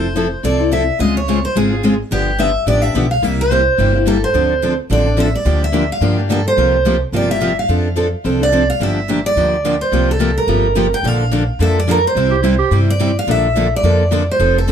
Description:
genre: acoustic string swing (jazz manouche)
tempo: 215 BPM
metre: 4/4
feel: swing 56% on 8ths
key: unclear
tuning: A4 = 440 Hz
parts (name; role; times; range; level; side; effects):
- picked steel-string acoustic guitar; melody; 0.0-14.7 s; G4 to G5; -17 LUFS; right 2 dB; none
- picked steel-string acoustic guitar; accompaniment; 0.0-14.7 s; C3 to A4; -19 LUFS; left 6 dB; none
- picked steel-string acoustic guitar; accompaniment; 0.0-14.7 s; C3 to A4; -22 LUFS; right 7 dB; none
- upright bass; bass; 0.0-14.7 s; F1 to G2; -18 LUFS; equal; none
- clear clarinet; second line; 12.3-12.8 s; E4 to G4; -18 LUFS; right 8 dB; none
room: light reverb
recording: close, detailed microphones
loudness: -13 LUFS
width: side -8 dB against mid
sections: 0.0-8.8 A section; 8.8-14.7 B section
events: none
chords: 0.0 Fmaj7; 1.0 Dbmaj7; 2.1 G7; 3.2 C7; 4.3 Dm7; 5.5 Gm7/D; 6.6 C7sus4; 7.7 F6; 8.8 Gm7; 9.9 C7sus4; 11.0 Bbmaj7; 12.2 C; 13.3 Bbmaj7

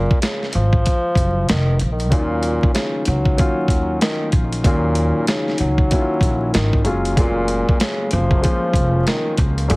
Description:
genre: hip hop, boom-bap hip-hop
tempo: 95 BPM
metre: 4/4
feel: swing 63% on 16ths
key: Eb minor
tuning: A4 = 440 Hz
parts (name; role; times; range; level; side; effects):
- breathy tenor saxophone; melody; 0.0-9.8 s; Bb2 to Gb3; -22 LUFS; equal; high-pass filter, low-pass filter, digital delay
- dark grand piano; accompaniment; 0.0-9.8 s; Eb3 to Ab4; -23 LUFS; left 1 dB; cassette tape, high-pass filter, low-pass filter
- upright bass; bass; 0.0-9.8 s; F1 to Eb2; -20 LUFS; equal; none
- dusty soul sampler-style drum kit; drums; 0.1-9.8 s; hi-hat, kick drum, snare drum; -18 LUFS; equal; vintage 12-bit sampler grit
room: little or no reverb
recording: heavily compressed radio sound, multiband compression, vinyl crackle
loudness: -16 LUFS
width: side -24 dB against mid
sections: 0.0-9.8 A section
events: break 0.0-2.1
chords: 0.0 Gbmaj9; 2.1 Ebm9; 6.9 Gbmaj9

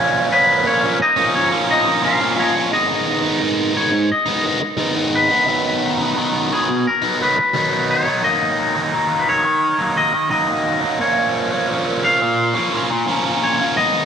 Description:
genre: rock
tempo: 87 BPM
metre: 4/4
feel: straight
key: G# dorian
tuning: A4 = 440 Hz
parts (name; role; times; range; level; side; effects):
- twangy electric guitar; melody; 0.0-14.1 s; B3 to E#5; -18 LUFS; left 2 dB; none
- overdriven electric guitar; riff; 0.0-14.1 s; G#2 to D#4; -18 LUFS; right 1 dB; phaser, slapback echo
room: wet lush hall reverb, RT60 2.2 s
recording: big arena sound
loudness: -15 LUFS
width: side -7 dB against mid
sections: 0.0-2.7 A section; 2.7-14.1 B section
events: half time 2.7-14.1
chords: 0.0 A#m; 2.7 G#m; 5.5 B; 8.2 D#m; 11.0 A#m

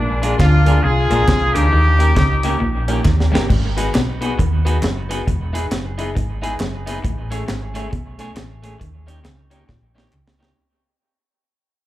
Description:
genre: ska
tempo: 136 BPM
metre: 4/4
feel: swing 61% on 8ths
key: unclear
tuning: A4 = 439 Hz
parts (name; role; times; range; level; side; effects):
- warm horn section; melody; 0.0-3.1 s; A#3 to G#4; -20 LUFS; left 1 dB; dub echo, slapback echo
- electric guitar at the edge of break-up; riff; 0.0-10.3 s; E2 to D#3; -26 LUFS; left 4 dB; analog chorus, dub echo, slapback echo
- hollow-body short-scale fingered electric bass; bass; 0.0-10.5 s; E1 to D#2; -18 LUFS; equal; none
- clean electric guitar; accompaniment; 0.2-10.5 s; G#3 to C#5; -27 LUFS; right 3 dB; dub echo, slapback echo
- warm upright piano; stabs; 0.2-10.5 s; A3 to G#4; -28 LUFS; left 6 dB; slapback echo
- deep reggae drum kit; drums; 0.2-10.5 s; crash cymbal, hi-hat, kick drum, snare drum; -20 LUFS; equal; dub echo
- group handclap; percussion; 0.4-10.3 s; none; -40 LUFS; right 1 dB; none
room: little or no reverb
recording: live gig heard through the venue's PA, club reverb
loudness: -15 LUFS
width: side -15 dB against mid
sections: 0.0-3.5 A section; 3.5-10.6 B section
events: drum fill 3.1-3.5, 9.7-10.6; fade-out 3.5-10.6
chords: 0.0 A#7; 1.7 D#7; 3.5 G#m7; 5.3 Emaj7; 7.0 Amaj7; 8.8 D#7

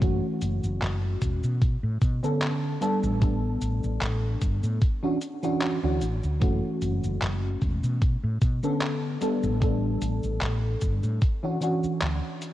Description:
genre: vaporwave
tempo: 75 BPM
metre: 4/4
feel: swing 55% on 16ths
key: D major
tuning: A4 = 439 Hz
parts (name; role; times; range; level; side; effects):
- mellow FM electric piano; accompaniment; 0.0-12.5 s; D3 to A4; -28 LUFS; equal; phaser, ensemble chorus, tape echo
- woody fretless electric bass; bass; 0.0-12.2 s; E1 to B2; -27 LUFS; equal; none
- detuned 8-bit digital drum machine; drums; 0.0-12.5 s; cabasa, handclaps, hi-hat; -35 LUFS; equal; none
- electronic kick drum; drums; 0.0-11.4 s; none; -24 LUFS; equal; none
room: light reverb, digital ambience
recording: cassette tape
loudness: -24 LUFS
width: side -14 dB against mid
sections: 0.0-12.5 A section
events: none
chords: 0.0 F#m7; 1.6 Bm9; 2.8 A9sus4; 4.8 Dmaj9; 6.4 F#m7; 8.0 Bm9; 9.2 A9sus4; 11.2 Dmaj9

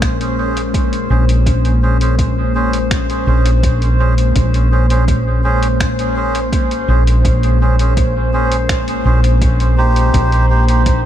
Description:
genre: ambient dub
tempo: 83 BPM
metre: 4/4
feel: straight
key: Bb minor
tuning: A4 = 439 Hz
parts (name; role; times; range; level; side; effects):
- airy breathy pad; sustained chords; 0.0-11.1 s; Bb2 to C5; -20 LUFS; left 2 dB; chorus
- hollow-body short-scale fingered electric bass; bass; 0.0-11.1 s; Bb1; -14 LUFS; equal; none
- electronic kick drum; drums; 0.0-11.0 s; none; -19 LUFS; equal; small room ambience
- lo-fi sampler-style drum kit; drums; 0.0-11.0 s; finger snaps, hi-hat; -26 LUFS; left 1 dB; overdrive, small room ambience, dub echo
- drifting glass-harmonics texture; texture; 0.1-11.1 s; C5; -27 LUFS; right 2 dB; chorus, built-in reverb
- melodica; stabs; 0.4-10.8 s; Db4 to C5; -21 LUFS; right 3 dB; dub echo
room: light reverb, digital ambience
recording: none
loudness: -12 LUFS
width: side -11 dB against mid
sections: 0.0-11.1 A section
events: none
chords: 0.0 Bbm9; 10.1 Cm/Bb

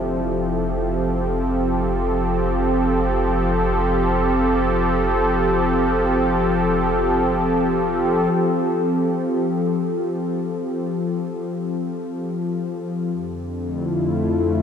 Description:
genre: ambient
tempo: free time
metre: none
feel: none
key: F major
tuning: A4 = 438 Hz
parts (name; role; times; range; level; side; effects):
- warm analog pad; sustained chords; 0.0-14.6 s; F2 to A4; -19 LUFS; equal; chorus
- mellow tine electric piano; arpeggios; 0.0-0.8 s; F3 to E5; -35 LUFS; left 3 dB; none
- warm sub bass; bass; 0.0-8.3 s; F1; -27 LUFS; equal; none
room: wet cathedral reverb, RT60 6.1 s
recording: in a vast, echoing space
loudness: -18 LUFS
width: side -7 dB against mid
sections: 0.0-8.3 A section; 8.3-14.6 B section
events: filter sweep on analog synth pad 8.3-14.6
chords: 0.0 F; 13.1 Dm7/F

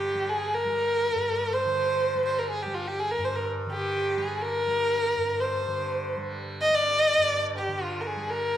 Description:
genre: indian classical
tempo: 124 BPM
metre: 4/4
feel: straight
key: G raga bhairavi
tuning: A4 = 440 Hz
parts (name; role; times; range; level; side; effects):
- dark violin; melody; 0.0-8.6 s; F4 to Eb5; -24 LUFS; equal; slapback echo
- tanpura; drone; 0.0-8.6 s; G2 to G3; -35 LUFS; equal; none
room: wet recital hall reverb, RT60 1.4 s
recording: none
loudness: -24 LUFS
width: side -11 dB against mid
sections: 0.0-8.6 A section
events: none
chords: none

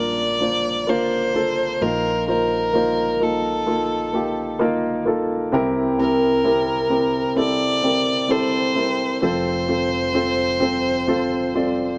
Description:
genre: pop ballad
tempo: 65 BPM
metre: 4/4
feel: straight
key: unclear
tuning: A4 = 440 Hz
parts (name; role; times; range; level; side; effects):
- warm violin; melody; 0.0-12.0 s; A4 to D5; -24 LUFS; equal; none
- warm grand piano; accompaniment; 0.0-12.0 s; F1 to D5; -23 LUFS; equal; none
room: light reverb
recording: none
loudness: -21 LUFS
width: mono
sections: 0.0-12.0 A section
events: none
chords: 0.0 Bb; 1.8 Ebsus2/Bb; 5.5 C7; 9.2 F

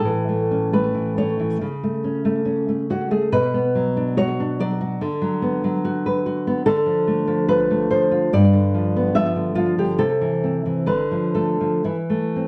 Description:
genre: romantic piece for solo classical guitar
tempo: 60-74 BPM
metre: 2/4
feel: rubato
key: unclear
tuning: A4 = 444 Hz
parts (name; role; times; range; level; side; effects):
- nylon-string guitar; solo; 0.0-12.5 s; G2 to E5; -21 LUFS; equal; slapback echo
room: moderate booth ambience, RT60 0.3 s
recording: dry, close 1970s-style studio recording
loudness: -21 LUFS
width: mono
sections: 0.0-12.5 A section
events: none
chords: 0.0 A; 1.6 A/C#; 3.3 Bm; 5.0 Bm/D; 6.7 Dm; 8.3 G7; 10.0 C; 10.9 Dm; 11.9 Am/E

